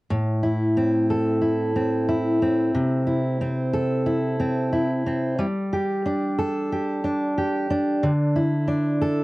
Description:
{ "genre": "pop", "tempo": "91 BPM", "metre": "4/4", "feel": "straight", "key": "A minor", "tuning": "A4 = 439 Hz", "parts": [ { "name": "fingerpicked steel-string acoustic guitar", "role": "accompaniment", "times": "0.1-9.2 s", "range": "A2 to A4", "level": "-21 LUFS", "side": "equal", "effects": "cassette tape" } ], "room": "moderate booth ambience, RT60 0.3 s", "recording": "home recording on cassette", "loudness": "-21 LUFS", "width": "side -20 dB against mid", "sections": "0.1-9.2 A section", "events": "none", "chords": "0.1 Am; 2.7 C6; 5.4 Gsus2; 8.0 Dsus2" }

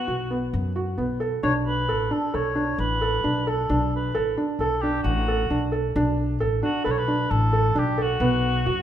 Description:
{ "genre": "contemporary instrumental, chamber music in an uneven meter", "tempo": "133 BPM", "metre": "5/4", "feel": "straight", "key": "unclear", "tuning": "A4 = 440 Hz", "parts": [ { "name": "mellow cor anglais", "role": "melody", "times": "0.0-8.8 s", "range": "F#4 to C#5", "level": "-27 LUFS", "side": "left 1 dB", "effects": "none" }, { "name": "felt-muted upright piano", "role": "arpeggios", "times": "0.0-8.8 s", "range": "B3 to A4", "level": "-25 LUFS", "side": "right 3 dB", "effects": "none" }, { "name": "upright bass", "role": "bass", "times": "0.1-8.8 s", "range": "A1 to F#2", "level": "-26 LUFS", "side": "left 1 dB", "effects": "none" } ], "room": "moderate scoring stage reverb, RT60 1.9 s", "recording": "minimal, uncompressed stereo recording", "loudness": "-21 LUFS", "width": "side -10 dB against mid", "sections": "0.0-8.8 A section", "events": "none", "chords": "0.0 B5; 1.4 D5; 8.2 B5" }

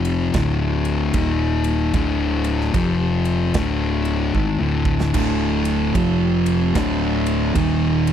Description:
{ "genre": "stoner and doom metal", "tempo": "75 BPM", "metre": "4/4", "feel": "swing 63% on 8ths", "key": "D minor", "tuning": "A4 = 439 Hz", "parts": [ { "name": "tonewheel organ", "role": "sustained chords", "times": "0.0-8.1 s", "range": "D3 to G4", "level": "-32 LUFS", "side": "right 6 dB", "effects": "slow rotary speaker, overdrive, chorus vibrato" }, { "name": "thick fuzz guitar", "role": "riff", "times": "0.0-8.1 s", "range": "D2 to F3", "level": "-20 LUFS", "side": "left 5 dB", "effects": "distortion" }, { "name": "hollow-body short-scale fingered electric bass", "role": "bass", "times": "0.0-8.1 s", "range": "D1 to G#1", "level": "-24 LUFS", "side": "right 2 dB", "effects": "overdrive" }, { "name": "big rock drum kit", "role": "drums", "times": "0.0-8.1 s", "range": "crash cymbal, kick drum, ride cymbal, snare drum", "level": "-27 LUFS", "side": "right 2 dB", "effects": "none" }, { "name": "thick fuzz guitar", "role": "riff", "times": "5.2-8.1 s", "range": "D2 to F3", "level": "-23 LUFS", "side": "right 14 dB", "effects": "distortion" } ], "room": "studio reverb", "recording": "dry, close 1970s-style studio recording", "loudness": "-17 LUFS", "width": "side -9 dB against mid", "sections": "0.0-8.1 A section", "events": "drum fill 4.3-5.1", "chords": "0.3 D5; 1.1 Eb5; 1.9 D5; 2.7 F5; 3.5 D5; 6.0 F5; 6.8 D5; 7.6 Eb5" }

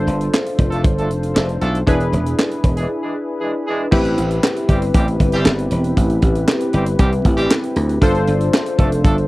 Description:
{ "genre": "early-eighties boogie funk", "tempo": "117 BPM", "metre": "4/4", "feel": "straight", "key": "A minor", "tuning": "A4 = 440 Hz", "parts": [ { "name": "funky polysynth comp", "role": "accompaniment", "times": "0.0-9.3 s", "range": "C4 to C5", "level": "-20 LUFS", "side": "left 1 dB", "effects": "chorus, cassette tape" }, { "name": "dry thumbed slap bass", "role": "bass", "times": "0.0-9.3 s", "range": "E1 to D2", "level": "-19 LUFS", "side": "equal", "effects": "none" }, { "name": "tight funk drum kit", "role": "drums", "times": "0.1-9.3 s", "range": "crash cymbal, handclaps, hi-hat, kick drum, snare drum", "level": "-17 LUFS", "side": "equal", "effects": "cassette tape" }, { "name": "clear horn section", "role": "second line", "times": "0.7-9.2 s", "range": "E3 to A4", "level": "-22 LUFS", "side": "right 1 dB", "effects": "cassette tape" } ], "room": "little or no reverb", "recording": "home recording on cassette", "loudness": "-15 LUFS", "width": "side -19 dB against mid", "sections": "0.0-3.9 A section; 3.9-9.3 B section", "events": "break 2.9-3.9", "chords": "0.0 G9sus4; 1.9 E7; 3.9 Am9; 8.0 G9sus4" }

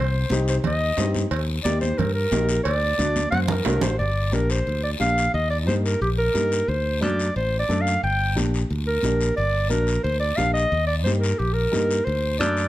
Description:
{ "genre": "latin, cumbia", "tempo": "179 BPM", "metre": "4/4", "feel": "straight", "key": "G harmonic minor", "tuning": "A4 = 441 Hz", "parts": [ { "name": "warm clarinet", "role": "melody", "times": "0.0-12.7 s", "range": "G4 to G5", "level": "-24 LUFS", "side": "equal", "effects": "plate reverb" }, { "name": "fingered electric bass", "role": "bass", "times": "0.0-12.7 s", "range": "G1 to G2", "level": "-24 LUFS", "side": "equal", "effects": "none" }, { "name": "congas", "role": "percussion", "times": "0.1-12.6 s", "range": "none", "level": "-30 LUFS", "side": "right 2 dB", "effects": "none" }, { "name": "dark upright piano", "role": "accompaniment", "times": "0.3-12.6 s", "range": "A3 to A4", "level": "-28 LUFS", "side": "left 2 dB", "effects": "none" }, { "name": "guiro", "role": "percussion", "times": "0.3-12.7 s", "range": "none", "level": "-35 LUFS", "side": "left 6 dB", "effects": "none" }, { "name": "cowbell and timbales", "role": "percussion", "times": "0.6-3.9 s", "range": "none", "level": "-31 LUFS", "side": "right 5 dB", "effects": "none" } ], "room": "moderate large studio reverb, RT60 0.8 s", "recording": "dark, warm production", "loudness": "-20 LUFS", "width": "side -15 dB against mid", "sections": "0.0-4.0 A section; 4.0-12.7 B section", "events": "drum fill 3.0-4.0", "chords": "0.0 Cm; 1.3 Eb; 2.7 D; 4.0 Gm; 5.3 Eb; 6.7 D7; 8.0 Gm; 10.7 Eb; 12.1 D7" }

